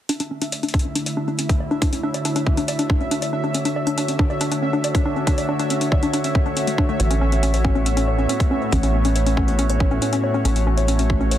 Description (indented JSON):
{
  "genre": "IDM",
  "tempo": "139 BPM",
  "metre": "4/4",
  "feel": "straight",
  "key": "D major",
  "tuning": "A4 = 441 Hz",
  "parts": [
    { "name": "warbly tape-like pad", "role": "sustained chords", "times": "0.3-11.4 s", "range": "A2 to C#5", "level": "-24 LUFS", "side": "equal", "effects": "chorus, built-in reverb, shimmer reverb" },
    { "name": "warbly dusty pluck", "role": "arpeggios", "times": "0.1-11.4 s", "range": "A3 to D5", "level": "-24 LUFS", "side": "left 1 dB", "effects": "chorus, digital delay, shimmer reverb" },
    { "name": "electronic hi-hat", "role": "drums", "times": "0.1-11.4 s", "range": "none", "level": "-28 LUFS", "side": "left 1 dB", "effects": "none" },
    { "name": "pulsing gated texture", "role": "texture", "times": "0.1-11.4 s", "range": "E5", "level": "-31 LUFS", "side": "right 1 dB", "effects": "chorus, built-in reverb, shimmer reverb" },
    { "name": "electronic kick drum", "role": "drums", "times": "0.7-11.2 s", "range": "none", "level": "-20 LUFS", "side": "equal", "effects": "overdrive" },
    { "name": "deep acid bass", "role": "bass", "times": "7.0-11.4 s", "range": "A1", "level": "-20 LUFS", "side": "equal", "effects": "none" }
  ],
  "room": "moderate plate reverb, RT60 1.6 s, digital ambience",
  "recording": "dense, heavily limited modern master",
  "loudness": "-18 LUFS",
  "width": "side -12 dB against mid",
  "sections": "0.1-11.4 A section",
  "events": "filter sweep on ambient pad 0.1-11.4",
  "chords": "0.1 Dmaj7; 7.0 A6",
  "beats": "| 0.09 0.52 0.95 1.39 | 1.82 2.25 2.68 3.11 | 3.54 3.98 4.41 4.84 | 5.27 5.70 6.13 6.57 | 7.00 7.43 7.86 8.29 | 8.72 9.16 9.59 10.02 | 10.45 10.88 11.31"
}